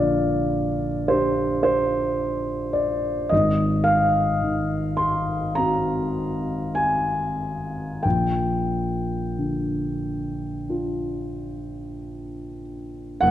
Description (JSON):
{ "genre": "classical, impressionist solo piano", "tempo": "45-55 BPM", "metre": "4/4", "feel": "rubato", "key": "Bb major", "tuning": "A4 = 440 Hz", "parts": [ { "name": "warm concert grand piano", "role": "solo", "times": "0.0-13.3 s", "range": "F#1 to C6", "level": "-21 LUFS", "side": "equal", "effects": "none" } ], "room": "wet scoring stage reverb, RT60 1.7 s", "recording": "dark, warm production", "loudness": "-21 LUFS", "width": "side -12 dB against mid", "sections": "0.0-13.2 A section", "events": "none", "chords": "0.0 Gm7/Bb; 3.3 Ab9; 8.0 Bb6", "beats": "1.10 2.20 | 3.32 4.43 5.57 6.78 | 8.05 9.38 10.69 11.98 | 13.22" }